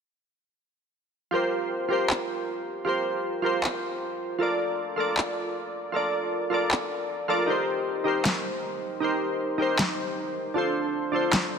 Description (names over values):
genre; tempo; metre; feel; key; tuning
future bass; 156 BPM; 4/4; half-time; unclear; A4 = 440 Hz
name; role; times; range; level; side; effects
glassy digital keys; accompaniment; 1.3-11.6 s; D4 to D5; -26 LUFS; equal; chorus, dub echo
electronic handclaps and snare drum; drums; 2.1-11.4 s; none; -28 LUFS; equal; none
room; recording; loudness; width
moderate lush hall reverb, RT60 2.2 s; dense, heavily limited modern master; -25 LUFS; side -6 dB against mid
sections
1.3-11.6 A section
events
none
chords
1.3 Fsus24; 4.4 Bbmaj7/F; 7.5 Eb6; 10.6 Dm7